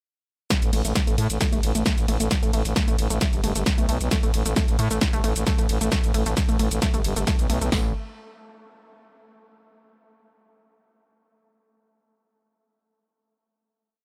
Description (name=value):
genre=driving peak-time techno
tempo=133 BPM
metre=4/4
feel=straight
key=unclear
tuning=A4 = 440 Hz
part: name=warbly dusty pluck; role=riff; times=0.5-7.9 s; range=A3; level=-33 LUFS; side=equal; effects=chorus, tube saturation, sidechain pumping, digital delay
part: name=techno drum kit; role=drums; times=0.5-7.8 s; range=hi-hat, kick drum, snare drum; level=-26 LUFS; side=equal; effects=none
part: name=techno drum kit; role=drums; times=0.5-7.7 s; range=hi-hat, ride cymbal, shaker, snare drum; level=-29 LUFS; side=equal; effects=sidechain pumping on hats, sidechain pumping on cymbals, sidechain pumping on perc
part: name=growling FM bass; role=bass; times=0.6-7.9 s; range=G1 to A2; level=-27 LUFS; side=equal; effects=sidechain pumping
room=little or no reverb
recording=none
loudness=-23 LUFS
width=mono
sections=0.5-7.7 drop; 7.7-9.5 final chord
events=drop 0.5-7.7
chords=none